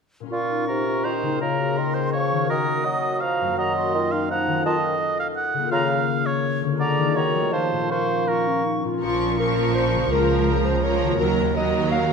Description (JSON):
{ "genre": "classical, dramatic, fast romantic movement for symphony orchestra", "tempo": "166 BPM", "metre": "3/4", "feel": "straight", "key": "Bb minor", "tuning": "A4 = 441 Hz", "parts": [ { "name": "concert harp", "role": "arpeggios", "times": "0.2-12.1 s", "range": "Gb2 to Bb4", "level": "-26 LUFS", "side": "left 8 dB", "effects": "none" }, { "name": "bright silver concert flute", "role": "second line", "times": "0.3-8.8 s", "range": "A5 to Eb6", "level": "-30 LUFS", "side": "left 1 dB", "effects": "none" }, { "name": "warm clarinet", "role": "second line", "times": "0.3-12.1 s", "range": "Db4 to F5", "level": "-28 LUFS", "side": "equal", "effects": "none" }, { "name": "warm oboe", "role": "second line", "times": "0.3-8.7 s", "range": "F4 to Gb5", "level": "-26 LUFS", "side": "right 4 dB", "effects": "none" }, { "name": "warm bassoon", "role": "accompaniment", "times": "0.3-8.8 s", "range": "Bb2 to Bb3", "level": "-26 LUFS", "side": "right 2 dB", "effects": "none" }, { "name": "warm symphonic violin section", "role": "melody", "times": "9.0-12.1 s", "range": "Bb5 to Db6", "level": "-31 LUFS", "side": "left 3 dB", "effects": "none" }, { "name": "warm studio violin section", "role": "second line", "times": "9.0-12.1 s", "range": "Bb4", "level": "-30 LUFS", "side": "left 5 dB", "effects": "none" }, { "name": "rich symphonic viola section", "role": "accompaniment", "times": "9.0-12.1 s", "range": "F3 to Gb3", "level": "-26 LUFS", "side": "right 3 dB", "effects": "none" }, { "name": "clear symphonic cello section", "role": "bass", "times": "9.0-12.1 s", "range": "Db2 to Bb2", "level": "-27 LUFS", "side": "right 6 dB", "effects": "none" }, { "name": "rich symphonic double bass section", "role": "bass", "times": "9.0-12.1 s", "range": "Bb1 to Eb2", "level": "-26 LUFS", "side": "right 4 dB", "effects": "none" } ], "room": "moderate scoring stage reverb, RT60 1.6 s", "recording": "none", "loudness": "-20 LUFS", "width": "side -5 dB against mid", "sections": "0.3-9.0 A section; 9.0-12.1 A section", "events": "none", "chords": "0.3 Bbm; 1.4 Bbm/Db; 2.5 Ebm; 3.6 Ebm/Gb; 4.7 F7/Eb; 5.7 Bbm/Db; 6.8 Bb7/D; 7.2 Ebm; 7.5 F; 7.9 Bbm; 10.1 Bbm/Db; 11.2 Ebm" }